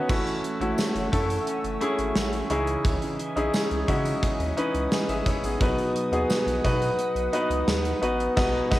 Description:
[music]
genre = 1980s-style pop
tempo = 87 BPM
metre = 4/4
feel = straight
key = unclear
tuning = A4 = 441 Hz
[part]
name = clear concert grand piano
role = accompaniment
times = 0.0-8.8 s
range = B2 to G#5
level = -25 LUFS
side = left 1 dB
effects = none
[part]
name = twelve-string electric guitar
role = riff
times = 0.0-8.8 s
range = E3 to F#4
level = -34 LUFS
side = right 4 dB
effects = wide subtle chorus, tape echo
[part]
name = phased analog pad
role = sustained chords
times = 0.1-8.8 s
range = B4 to E6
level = -37 LUFS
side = right 1 dB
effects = phaser, chorus
[part]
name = round analog bass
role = bass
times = 0.1-8.8 s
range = F#1 to C#3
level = -31 LUFS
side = equal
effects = none
[part]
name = gated 80s drum kit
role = drums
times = 0.1-8.8 s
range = crash cymbal, hi-hat, kick drum, snare drum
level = -27 LUFS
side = equal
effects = cassette tape
[part]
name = tambourine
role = percussion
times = 0.8-7.8 s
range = none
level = -42 LUFS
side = right 8 dB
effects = none
[sound]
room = wet small room reverb, RT60 0.6 s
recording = home recording on cassette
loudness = -23 LUFS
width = side -15 dB against mid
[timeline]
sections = 0.1-8.8 A section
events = band accent 8.4-8.8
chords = 0.1 F#m7; 2.5 C#madd9; 5.6 B

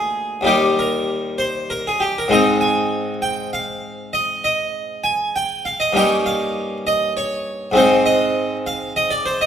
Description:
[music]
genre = classical, baroque-style suite movement for harpsichord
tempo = 66 BPM (dotted quarters)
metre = 12/8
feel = rubato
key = unclear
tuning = A4 = 441 Hz
[part]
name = harpsichord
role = solo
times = 0.0-9.5 s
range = D2 to Bb5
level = -17 LUFS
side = equal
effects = none
[sound]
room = moderate scoring stage reverb, RT60 1.5 s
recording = recorded in a church or concert hall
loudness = -17 LUFS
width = side -8 dB against mid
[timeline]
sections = 0.0-9.5 A section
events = none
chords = 0.5 Eb; 2.3 Ab; 6.0 Eb7/G; 7.8 Ab

